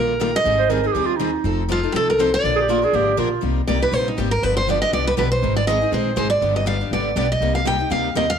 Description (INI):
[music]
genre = acoustic string swing (jazz manouche)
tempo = 241 BPM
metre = 4/4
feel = swing 55% on 8ths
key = C minor from 3.4 s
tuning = A4 = 442 Hz
[part]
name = picked steel-string acoustic guitar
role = melody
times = 0.0-8.4 s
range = Eb4 to G5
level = -20 LUFS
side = right 1 dB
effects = none
[part]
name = picked plugged-in steel-string acoustic guitar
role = accompaniment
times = 0.0-8.3 s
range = C3 to Bb4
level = -28 LUFS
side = right 9 dB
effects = none
[part]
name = picked steel-string acoustic guitar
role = accompaniment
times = 0.0-8.3 s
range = C3 to Bb4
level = -26 LUFS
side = left 12 dB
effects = none
[part]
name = upright bass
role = bass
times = 0.0-8.4 s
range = F1 to Eb2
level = -24 LUFS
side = left 2 dB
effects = none
[part]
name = breathy clarinet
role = second line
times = 0.6-3.4 s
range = Eb4 to C5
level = -22 LUFS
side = right 6 dB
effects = none
[sound]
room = moderate echo chamber reverb, RT60 1.4 s, studio reverb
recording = 1960s-style stereo with parts hard left and right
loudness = -17 LUFS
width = side -7 dB against mid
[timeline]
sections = 0.0-3.4 A section; 3.4-8.4 B section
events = steel-string acoustic guitar solo 3.4-8.4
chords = 0.4 Abmaj7; 1.4 F7; 2.4 Bb; 3.4 Cm7; 4.4 G7; 5.4 Ab; 6.4 G; 7.4 Cm7